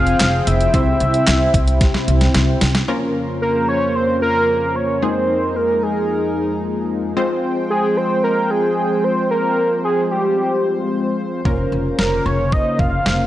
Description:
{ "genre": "synth-pop", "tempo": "112 BPM", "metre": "4/4", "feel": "straight", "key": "F minor", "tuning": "A4 = 440 Hz", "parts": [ { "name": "fat analog lead", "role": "melody", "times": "0.0-13.3 s", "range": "G4 to F5", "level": "-18 LUFS", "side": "right 1 dB", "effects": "slapback echo" }, { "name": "funky polysynth comp", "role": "accompaniment", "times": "0.0-13.3 s", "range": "F2 to C5", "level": "-23 LUFS", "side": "left 2 dB", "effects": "chorus" }, { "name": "chorused pulse-width pad", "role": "sustained chords", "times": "0.0-13.3 s", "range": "F2 to G5", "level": "-23 LUFS", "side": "equal", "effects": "none" }, { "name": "upright bass", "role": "bass", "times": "0.0-2.8, 11.5-13.2 s", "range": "F1 to C2", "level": "-18 LUFS", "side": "equal", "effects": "none" }, { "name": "detuned 8-bit digital drum machine", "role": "drums", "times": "0.1-2.9, 11.5-13.2 s", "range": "handclaps, hi-hat, kick drum, snare drum", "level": "-19 LUFS", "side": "equal", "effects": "overdrive" } ], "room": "moderate lush hall reverb, RT60 2.1 s", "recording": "nothing above 10.8 kHz", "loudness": "-15 LUFS", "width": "side -13 dB against mid", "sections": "0.0-2.9 A section; 2.9-13.3 B section", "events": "drum fill 1.8-2.9", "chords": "0.0 Fmadd9; 0.7 C; 2.9 Bbmadd9/F; 5.0 Absus2/F; 7.2 Fmadd9; 11.5 Bbmadd9/F" }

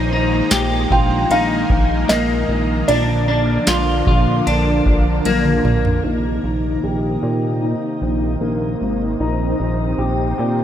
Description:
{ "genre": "dream pop", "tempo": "76 BPM", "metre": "4/4", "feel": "straight", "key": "unclear", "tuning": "A4 = 441 Hz", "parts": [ { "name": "felt-muted upright piano", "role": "melody", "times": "0.0-3.6 s", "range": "C5 to G5", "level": "-23 LUFS", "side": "right 2 dB", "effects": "tape echo" }, { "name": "string machine, violins", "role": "sustained chords", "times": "0.0-10.6 s", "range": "C3 to C4", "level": "-22 LUFS", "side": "right 2 dB", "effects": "ensemble chorus, low-pass filter" }, { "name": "clean electric guitar", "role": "arpeggios", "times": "0.0-10.6 s", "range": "Bb3 to G4", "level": "-21 LUFS", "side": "left 3 dB", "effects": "analog chorus, low-pass filter, tape echo" }, { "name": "chorused synth bass", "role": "bass", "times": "0.0-10.6 s", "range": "Ab1 to Bb2", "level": "-20 LUFS", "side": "equal", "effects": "none" }, { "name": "booming analog drum machine", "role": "drums", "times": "0.5-6.0 s", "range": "kick drum, ride cymbal, snare drum, tambourine, toms", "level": "-19 LUFS", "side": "equal", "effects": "none" } ], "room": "moderate shimmer reverb, RT60 4.1 s", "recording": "none", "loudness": "-15 LUFS", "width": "side -10 dB against mid", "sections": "0.0-6.0 A section; 6.0-10.6 B section", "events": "drum fill 5.3-6.0", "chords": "0.0 Absus2/Bb; 2.9 Bb; 6.0 Cm7" }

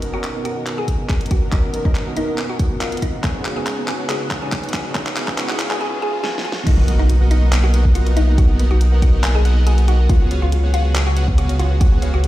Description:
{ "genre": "future bass", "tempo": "140 BPM", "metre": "4/4", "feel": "half-time", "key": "unclear", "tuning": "A4 = 440 Hz", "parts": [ { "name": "dark concert grand piano", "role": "accompaniment", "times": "0.0-6.5 s", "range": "B2 to A#4", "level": "-29 LUFS", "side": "equal", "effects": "sidechain pumping, digital delay" }, { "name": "rich symphonic string section", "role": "sustained chords", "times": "0.0-12.3 s", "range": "B2 to A#4", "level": "-32 LUFS", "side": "right 1 dB", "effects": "sidechain pumping" }, { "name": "soft supersaw", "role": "riff", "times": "0.0-12.1 s", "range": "B3 to G#5", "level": "-27 LUFS", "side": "right 1 dB", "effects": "sidechain pumping, low-pass filter" }, { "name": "pop drum kit", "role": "drums", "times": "0.0-12.3 s", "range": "crash cymbal, handclaps, hi-hat, snare drum", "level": "-26 LUFS", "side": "equal", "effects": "none" }, { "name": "riser and impact", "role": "sound effects", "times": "2.4-8.4 s", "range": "none", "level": "-28 LUFS", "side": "equal", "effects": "none" }, { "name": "mallet-like synth pluck", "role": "melody", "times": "0.1-12.3 s", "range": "D#4 to G#5", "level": "-27 LUFS", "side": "left 1 dB", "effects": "phaser, wide subtle chorus, sidechain pumping, digital delay" }, { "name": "electronic kick drum", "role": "drums", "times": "0.9-11.9 s", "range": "none", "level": "-17 LUFS", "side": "equal", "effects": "none" }, { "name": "thumb-piano-like synth pluck", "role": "arpeggios", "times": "6.7-12.3 s", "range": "D#4 to F#5", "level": "-34 LUFS", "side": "left 2 dB", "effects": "none" }, { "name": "wide unison pluck", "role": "arpeggios", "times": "6.7-12.1 s", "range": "E#5 to G#5", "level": "-37 LUFS", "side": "right 1 dB", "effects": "none" }, { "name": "saturated sub bass", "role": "bass", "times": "6.7-12.3 s", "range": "B1 to C#2", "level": "-15 LUFS", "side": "equal", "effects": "tube saturation, sidechain pumping" } ], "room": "digital ambience", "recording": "played on a big sound system in a bare room, large studio reverb, high-pass filter", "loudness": "-15 LUFS", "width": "side -15 dB against mid", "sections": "0.0-6.7 A section; 6.7-12.3 B section", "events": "build-up 0.0-6.7; drum fill 0.0-5.8, 6.2-6.7; filter sweep on supersaw synth 0.0-6.7; filter sweep 0.0-6.7; riser 2.4-6.7; drop 6.7-12.3; impact 6.7-8.4", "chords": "0.0 Bmaj7; 3.2 C#7sus4; 6.5 N.C.; 6.7 Bmaj7; 10.1 C#7sus4" }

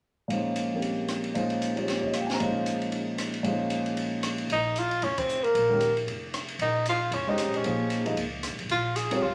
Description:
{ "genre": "modal jazz", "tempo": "229 BPM", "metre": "4/4", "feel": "swing 59% on 8ths", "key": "Bb dorian", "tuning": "A4 = 440 Hz", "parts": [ { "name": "warm upright piano", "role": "accompaniment", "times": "0.3-9.2 s", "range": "Bb2 to Bb5", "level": "-30 LUFS", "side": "equal", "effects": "none" }, { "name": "open jazz drum kit", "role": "drums", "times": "0.3-9.2 s", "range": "hi-hat, kick drum, ride cymbal, rim click, snare drum", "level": "-37 LUFS", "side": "equal", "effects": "none" }, { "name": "warm tenor saxophone", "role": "melody", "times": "4.5-9.3 s", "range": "Bb3 to Ab4", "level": "-28 LUFS", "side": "equal", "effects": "none" }, { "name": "upright bass", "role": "bass", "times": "4.5-9.3 s", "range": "F1 to Db2", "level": "-38 LUFS", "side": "equal", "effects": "none" } ], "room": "wet large studio reverb, RT60 1.1 s", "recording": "none", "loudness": "-28 LUFS", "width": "mono", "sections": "0.3-4.5 A section; 4.5-9.3 B section", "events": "band accent 5.2", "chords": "0.3 Bbm11" }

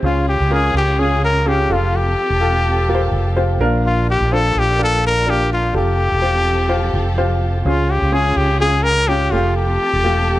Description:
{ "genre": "piano-driven pop", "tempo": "126 BPM", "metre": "4/4", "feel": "swing 56% on 16ths", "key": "unclear", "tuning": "A4 = 440 Hz", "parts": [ { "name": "dark upright piano", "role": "accompaniment", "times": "0.0-10.4 s", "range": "Bb2 to C5", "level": "-21 LUFS", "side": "equal", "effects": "none" }, { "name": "dark studio string section", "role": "sustained chords", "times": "0.0-10.4 s", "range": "Db3 to A4", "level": "-28 LUFS", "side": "right 1 dB", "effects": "none" }, { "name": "mellow fretless electric bass", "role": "bass", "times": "0.0-10.4 s", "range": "E1 to Db2", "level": "-18 LUFS", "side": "equal", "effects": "none" }, { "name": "warm trumpet", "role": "melody", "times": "0.1-10.4 s", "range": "F4 to Bb4", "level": "-18 LUFS", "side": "left 2 dB", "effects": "none" } ], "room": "light reverb, small room ambience", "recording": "nothing above 10.8 kHz", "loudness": "-14 LUFS", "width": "side -15 dB against mid", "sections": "0.0-10.4 A section", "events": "none", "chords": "0.0 Db; 1.7 Fadd9; 3.6 Bb; 5.7 Fadd9; 7.7 Db; 9.3 Fadd9" }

